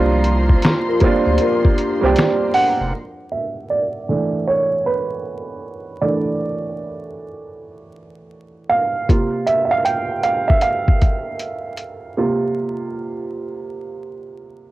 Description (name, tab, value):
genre	lo-fi hip hop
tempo	78 BPM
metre	4/4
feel	swing 64% on 16ths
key	unclear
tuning	A4 = 440 Hz
part	clear upright piano	accompaniment	0.0-14.7 s	C3 to G5	-19 LUFS	right 3 dB	low-pass filter
part	clear studio string section	sustained chords	0.0-2.9 s	F3 to C6	-27 LUFS	left 1 dB	low-pass filter
part	saturated sub bass	bass	0.0-2.9 s	F1 to D2	-18 LUFS	equal	none
part	lo-fi sampler-style drum kit	drums	0.2-2.8, 9.1-12.0 s	finger snaps, hi-hat, kick drum, snare drum	-16 LUFS	equal	cassette tape
part	vibraphone with medium hard mallets	second line	0.9-2.8 s	D4 to D5	-22 LUFS	left 4 dB	low-pass filter, analog delay
room	moderate studio reverb, RT60 0.5 s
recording	home recording on cassette, vinyl crackle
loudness	-16 LUFS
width	side -16 dB against mid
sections	0.0-2.9 A section; 2.9-14.7 B section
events	upright piano solo 2.9-14.7; break 12.2-14.7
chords	0.0 C9sus4; 2.9 E7sus4; 9.1 C7sus4